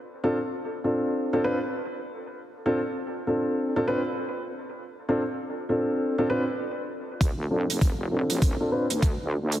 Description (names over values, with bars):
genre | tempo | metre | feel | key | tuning
glitch hop | 99 BPM | 4/4 | swing 62% on 16ths | D dorian | A4 = 445 Hz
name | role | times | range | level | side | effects
dark baby grand piano | stabs | 0.2-8.8 s | C4 to B4 | -26 LUFS | equal | sidechain pumping, low-pass filter, dub echo
wobble bass | bass | 7.2-9.6 s | F1 to D2 | -28 LUFS | equal | chorus, tube saturation, high-pass filter
electronic kick drum | drums | 7.2-9.2 s | none | -23 LUFS | equal | small room reverb
hi-hat | drums | 7.2-9.6 s | none | -33 LUFS | right 4 dB | small room reverb
room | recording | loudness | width
moderate lush hall reverb, RT60 2.4 s | heavily compressed radio sound, multiband compression | -24 LUFS | side -12 dB against mid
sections
0.0-7.2 A section; 7.2-9.6 B section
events
build-up 7.2-9.6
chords
0.0 Dm7